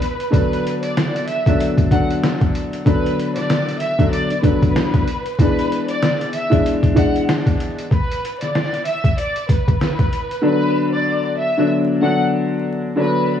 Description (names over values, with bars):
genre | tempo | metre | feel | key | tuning
hip hop, boom-bap hip-hop | 95 BPM | 4/4 | swing 58% on 16ths | B dorian | A4 = 440 Hz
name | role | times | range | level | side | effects
warm studio violin section | melody | 0.0-13.4 s | B4 to F#5 | -23 LUFS | equal | high-pass filter, low-pass filter
trip hop sampler-style drum kit | drums | 0.0-10.4 s | hi-hat, kick drum, snare drum | -18 LUFS | equal | vintage 12-bit sampler grit
warm upright piano | accompaniment | 0.3-13.4 s | D3 to D4 | -19 LUFS | left 1 dB | cassette tape, high-pass filter, low-pass filter
room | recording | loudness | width
light reverb | worn, warbling old tape, cassette tape, vinyl crackle, warbly pitch drift | -16 LUFS | side -9 dB against mid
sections
0.3-10.4 A section; 10.4-13.4 B section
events
break 7.9-10.4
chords
0.3 Bm; 5.4 E7; 10.4 Bm